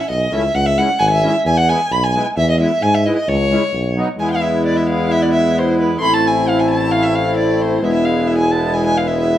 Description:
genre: klezmer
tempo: 132 BPM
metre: 2/4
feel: straight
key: E phrygian dominant from 4.2 s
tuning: A4 = 441 Hz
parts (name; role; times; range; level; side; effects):
- dark violin; melody; 0.0-9.4 s; B4 to C6; -17 LUFS; equal; none
- clear tuba; bass; 0.1-9.4 s; E1 to G#2; -20 LUFS; equal; none
- accordion; accompaniment; 0.3-9.4 s; F#3 to E4; -17 LUFS; left 1 dB; light tremolo tuning
room: moderate studio reverb, RT60 0.6 s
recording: heard from further back in the room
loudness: -13 LUFS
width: side -12 dB against mid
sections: 0.0-4.2 A section; 4.2-9.4 B section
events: none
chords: 0.0 A; 0.6 C#m; 1.5 E; 3.3 C#m; 3.7 B; 4.2 E; 6.0 Am; 7.8 E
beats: 0.10 | 0.55 1.01 | 1.47 1.92 | 2.38 2.83 | 3.29 3.75 | 4.20 4.66 | 5.11 5.57 | 6.02 6.48 | 6.93 7.39 | 7.84 8.29 | 8.74 9.20

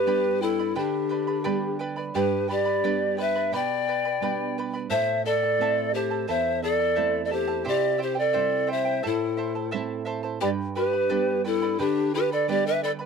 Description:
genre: andean folk, Andean ensemble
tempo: 87 BPM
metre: 2/4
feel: straight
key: unclear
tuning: A4 = 442 Hz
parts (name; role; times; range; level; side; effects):
- polished pan flute; melody; 0.0-12.9 s; G4 to G5; -25 LUFS; right 2 dB; none
- breathy bright pan flute; second line; 0.0-12.9 s; D4 to D5; -28 LUFS; left 12 dB; none
- charango; accompaniment; 0.0-13.1 s; E4 to B5; -33 LUFS; right 4 dB; none
- nylon-string guitar; accompaniment; 0.0-13.1 s; E2 to E4; -32 LUFS; right 9 dB; none
room: little or no reverb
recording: dry, close 1970s-style studio recording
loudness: -23 LUFS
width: side -6 dB against mid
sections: 0.0-10.4 A section; 10.4-13.1 A section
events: none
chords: 0.0 G; 4.9 Am; 7.7 C; 9.0 Am; 10.4 G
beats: 0.07 | 0.76 1.45 | 2.15 2.84 | 3.53 4.22 | 4.91 5.60 | 6.29 6.98 | 7.67 8.36 | 9.05 9.73 | 10.42 11.11 | 11.80 12.49

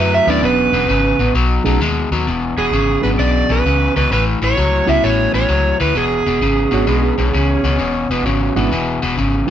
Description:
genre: electric blues shuffle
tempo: 130 BPM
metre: 4/4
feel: swing 66% on 8ths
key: E mixolydian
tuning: A4 = 440 Hz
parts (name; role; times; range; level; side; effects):
- overdriven slide guitar; melody; 0.0-7.8 s; G#4 to E5; -17 LUFS; right 3 dB; slapback echo
- overdriven electric guitar; riff; 0.0-9.5 s; E2 to G#3; -18 LUFS; left 3 dB; none
- vintage muted fingered electric bass; bass; 0.0-9.4 s; E1 to F#2; -19 LUFS; equal; none
- barky reed electric piano; accompaniment; 0.3-9.5 s; F#3 to B4; -20 LUFS; right 4 dB; overdrive
- breathy tenor saxophone; second line; 6.7-9.0 s; E3 to C#4; -23 LUFS; right 2 dB; none
room: moderate small room ambience, RT60 0.5 s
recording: band playing live in one room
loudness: -13 LUFS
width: side -10 dB against mid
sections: 0.0-2.3 A section; 2.3-9.5 B section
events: electric slide guitar solo 0.0-2.3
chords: 0.4 E13; 1.3 B13; 2.3 E13; 4.1 A13; 5.9 E13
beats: | 0.43 0.89 1.35 1.80 | 2.26 2.72 3.18 3.64 | 4.10 4.56 5.02 5.49 | 5.95 6.41 6.87 7.33 | 7.79 8.25 8.72 9.18

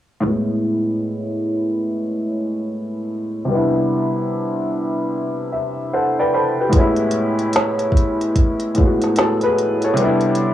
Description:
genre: lo-fi hip hop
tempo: 74 BPM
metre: 4/4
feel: swing 64% on 16ths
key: A major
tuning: A4 = 440 Hz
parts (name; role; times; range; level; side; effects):
- clear upright piano; accompaniment; 0.2-10.5 s; A2 to B5; -18 LUFS; equal; low-pass filter, cassette tape
- organic electronic drum kit; drums; 6.7-10.5 s; hi-hat, kick drum, snare drum; -18 LUFS; equal; cassette tape
room: moderate spring reverb, RT60 2.5 s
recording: home recording on cassette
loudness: -17 LUFS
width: side -12 dB against mid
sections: 0.2-10.5 A section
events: filter sweep on upright piano 0.2-10.5; upright piano fill 5.1-6.7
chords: 0.2 Amaj9; 3.5 Cmaj9; 6.7 Amaj9; 10.0 Cmaj9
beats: | 0.24 1.05 1.86 2.67 | 3.49 4.30 5.11 5.92 | 6.73 7.54 8.35 9.16 | 9.97

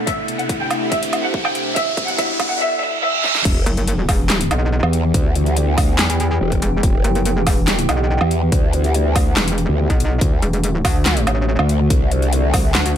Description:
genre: heavy wobble dubstep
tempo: 142 BPM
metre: 4/4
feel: half-time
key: E minor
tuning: A4 = 439 Hz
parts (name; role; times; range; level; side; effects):
- supersaw pad; sustained chords; 0.0-13.0 s; B2 to G4; -25 LUFS; equal; phaser, sidechain pumping, low-pass filter
- riser, reverse cymbal and sub drop; sound effects; 0.0-5.1 s; none; -23 LUFS; right 3 dB; none
- warbly tape-like pad; texture; 0.0-13.0 s; C3 to G5; -30 LUFS; equal; chorus, built-in reverb, sidechain pumping
- rich symphonic violin section; melody; 0.1-3.4 s; E5 to G5; -22 LUFS; equal; tape echo
- dubstep drum kit; drums; 0.1-12.9 s; crash cymbal, handclaps, hi-hat, snare drum, woodblock; -22 LUFS; equal; studio reverb
- electronic kick drum; drums; 0.1-12.6 s; none; -19 LUFS; equal; studio reverb
- growl bass; bass; 3.5-12.7 s; E1 to E2; -17 LUFS; equal; chorus, overdrive
- metallic wobble bass; bass; 3.7-13.0 s; E1 to E2; -18 LUFS; equal; chorus, overdrive
room: light reverb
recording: high-pass filter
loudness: -15 LUFS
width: side -10 dB against mid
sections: 0.0-3.5 A section; 3.5-13.0 B section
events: build-up 0.0-3.5; riser 0.0-2.6; filter sweep 0.0-3.5; drum fill 0.1-2.6, 3.2; reverse cymbal 2.6-3.5; drop 3.5-13.0; impact 3.5-5.1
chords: 0.1 Am/C; 1.8 Bsus4; 3.5 Em; 10.2 D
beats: | 0.07 0.49 0.92 1.34 | 1.76 2.19 2.61 3.03 | 3.45 3.88 4.30 4.72 | 5.14 5.57 5.99 6.41 | 6.83 7.26 7.68 8.10 | 8.52 8.95 9.37 9.79 | 10.21 10.64 11.06 11.48 | 11.90 12.33 12.75

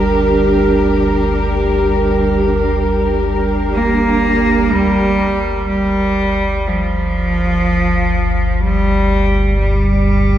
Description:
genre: dark ambient drone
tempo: free time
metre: none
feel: none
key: G minor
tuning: A4 = 440 Hz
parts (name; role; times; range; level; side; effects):
- dark symphonic cello section; sustained chords; 0.0-4.7 s; G3 to Bb4; -16 LUFS; equal; none
- deep rumbling drone; drone; 0.0-10.4 s; G1 to D2; -18 LUFS; equal; built-in reverb, lush chorus
- metallic inharmonic drone; texture; 0.0-4.7 s; Bb4; -22 LUFS; right 5 dB; chorus, built-in reverb
- rich cello; melody; 3.7-10.4 s; F3 to Bb3; -15 LUFS; right 1 dB; analog delay
- impact; percussion; 4.7-4.9 s; none; barely audible; none; none
room: wet lush hall reverb, RT60 3.1 s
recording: dreamy mix soaked in reverb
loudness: -13 LUFS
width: side -11 dB against mid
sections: 0.0-4.7 A section; 4.7-10.4 B section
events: none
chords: 0.0 Gm; 4.7 G5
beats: free time

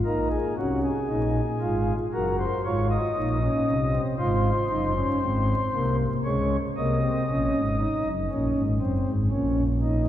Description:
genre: classical, baroque-style 3-part fugue for pipe organ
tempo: 58 BPM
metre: 4/4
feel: straight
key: unclear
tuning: A4 = 440 Hz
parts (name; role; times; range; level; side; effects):
- pipe organ, flutes; solo; 0.0-10.1 s; F#1 to D#5; -22 LUFS; equal; none
room: wet church reverb, RT60 3.2 s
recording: vinyl crackle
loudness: -22 LUFS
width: side -12 dB against mid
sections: 0.1-10.1 A section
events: none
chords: 0.0 C#; 2.1 D#m/F#; 6.3 C#5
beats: | 0.07 1.10 2.14 3.17 | 4.19 5.22 6.25 7.28 | 8.30 9.32

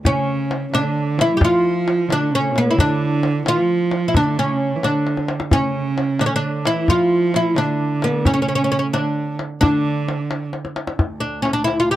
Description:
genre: Persian modal ensemble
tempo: 88 BPM (dotted quarters)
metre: 6/8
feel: straight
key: D avaz esfahan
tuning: A4 = 440 Hz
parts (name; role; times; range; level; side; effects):
- dark cello; drone; 0.0-0.1, 11.0-12.0 s; D2; -34 LUFS; right 2 dB; stereo widening
- oud; melody; 0.1-12.0 s; Bb3+50c to G4; -19 LUFS; left 1 dB; none
- rich cello; second line; 0.1-10.5 s; B2-43c to G3; -22 LUFS; right 5 dB; none
- tombak; percussion; 0.1-11.8 s; none; -21 LUFS; left 2 dB; none
room: little or no reverb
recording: dry, close 1970s-style studio recording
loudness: -17 LUFS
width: side -13 dB against mid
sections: 0.1-11.0 A section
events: drum fill 5.1-5.5, 10.5-11.0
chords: none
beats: | 0.05 0.73 | 1.41 2.10 | 2.78 3.46 | 4.14 4.83 | 5.51 6.19 | 6.87 7.56 | 8.24 8.93 | 9.61 10.29 | 10.98 11.66

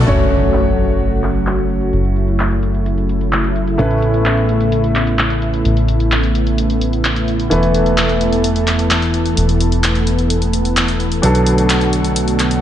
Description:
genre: EDM, festival progressive house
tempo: 129 BPM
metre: 4/4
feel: straight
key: unclear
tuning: A4 = 444 Hz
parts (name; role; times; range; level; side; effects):
- lush unison pad; sustained chords; 0.0-12.6 s; C#3 to A4; -18 LUFS; equal; chorus
- fat analog bass; bass; 0.0-12.6 s; E1 to B1; -18 LUFS; equal; none
- clear grand piano; accompaniment; 0.1-12.6 s; A2 to C#5; -19 LUFS; equal; dub echo
- big-room dance drum kit; drums; 0.1-12.6 s; handclaps, hi-hat; -20 LUFS; left 1 dB; low-pass filter on hats, low-pass filter on perc, low-pass filter on snare, low-pass filter on toms
- impact; sound effects; 0.1-1.9 s; none; -20 LUFS; equal; none
room: moderate lush hall reverb, RT60 2.5 s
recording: nothing above 10.9 kHz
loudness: -13 LUFS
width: side -11 dB against mid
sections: 0.1-12.6 A section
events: impact 0.1-1.9; filter sweep on drum 0.1-12.6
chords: 0.1 F#m; 3.8 Aadd9; 7.5 Esus4; 11.2 Bm7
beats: | 0.07 0.54 1.00 1.47 | 1.93 2.40 2.86 3.33 | 3.79 4.26 4.72 5.19 | 5.65 6.12 6.58 7.05 | 7.51 7.98 8.44 8.91 | 9.37 9.84 10.30 10.77 | 11.23 11.70 12.16

